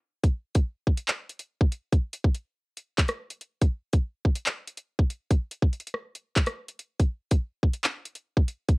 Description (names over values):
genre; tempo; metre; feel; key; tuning
hip hop; 142 BPM; 4/4; half-time; none; none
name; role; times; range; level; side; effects
drill drum kit; drums; 0.2-8.8 s; handclaps, hi-hat, kick drum, rim click; -22 LUFS; equal; cassette tape
room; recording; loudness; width
little or no reverb; home recording on cassette; -25 LUFS; side -31 dB against mid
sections
0.2-8.8 A section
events
break 0.0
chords
none